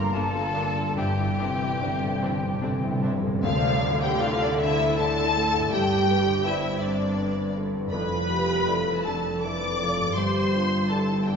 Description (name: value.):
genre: cinematic, emotional film score for orchestra.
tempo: 69-83 BPM.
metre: 3/4.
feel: rubato.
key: D dorian from 3.4 s.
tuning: A4 = 438 Hz.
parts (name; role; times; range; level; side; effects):
rich studio violin section; second line; 0.0-11.4 s; G4 to D6; -33 LUFS; left 4 dB; none.
silver concert flute; second line; 0.0-3.0 s; G5 to Bb5; -31 LUFS; left 2 dB; none.
warm grand piano; accompaniment; 0.0-11.4 s; D2 to D5; -30 LUFS; left 1 dB; none.
concert harp; arpeggios; 0.0-11.4 s; F2 to D6; -35 LUFS; left 4 dB; none.
rich symphonic cello section; bass; 0.0-11.4 s; F2 to D3; -31 LUFS; right 2 dB; none.
warm studio double bass section; bass; 0.0-11.4 s; F1 to D2; -32 LUFS; right 2 dB; none.
warm studio viola section; accompaniment; 0.1-11.4 s; F3 to D5; -32 LUFS; right 2 dB; none.
rich studio violin section; melody; 0.2-11.4 s; E4 to D6; -29 LUFS; left 4 dB; none.
timpani; percussion; 1.0-3.4 s; C3; -31 LUFS; equal; none.
tam-tam; percussion; 3.4-6.4 s; none; -36 LUFS; equal; none.
dark French horn section; sustained chords; 4.2-11.4 s; E4 to C5; -30 LUFS; equal; none.
room: wet concert hall reverb, RT60 1.9 s.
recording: recorded in a church or concert hall, nothing above 7.7 kHz.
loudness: -22 LUFS.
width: side -6 dB against mid.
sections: 0.0-3.4 A section; 3.4-11.4 B section.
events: timpani fill 1.0-3.4; band accent 3.4-4.2.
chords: 0.0 Gm7; 1.0 Cadd9/G; 3.4 Dsus2; 5.7 Gsus4; 7.9 Dmadd9/F; 10.2 Gsus4.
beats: 0.14 | 0.97 1.82 2.63 | 3.43 4.20 4.99 | 5.73 6.46 7.18 | 7.92 8.65 9.42 | 10.15 10.89.